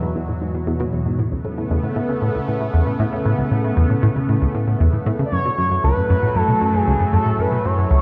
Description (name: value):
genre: ambient, sequencer-driven space music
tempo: 116 BPM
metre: 4/4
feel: straight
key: A major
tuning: A4 = 436 Hz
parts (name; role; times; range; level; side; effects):
- lush unison pad; sustained chords; 0.0-8.0 s; E2 to B3; -25 LUFS; equal; chorus, phaser
- tight sequenced synth; riff; 0.0-8.0 s; C#2 to C#3; -22 LUFS; equal; chorus, phaser, tape echo
- expressive synth lead; melody; 5.3-8.0 s; G#4 to D5; -24 LUFS; equal; subtle chorus, tape echo
room: wet concert hall reverb, RT60 2.5 s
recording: none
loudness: -19 LUFS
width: mono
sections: 0.0-8.0 A section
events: none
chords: 0.0 Esus2; 1.2 Aadd9; 5.3 F#m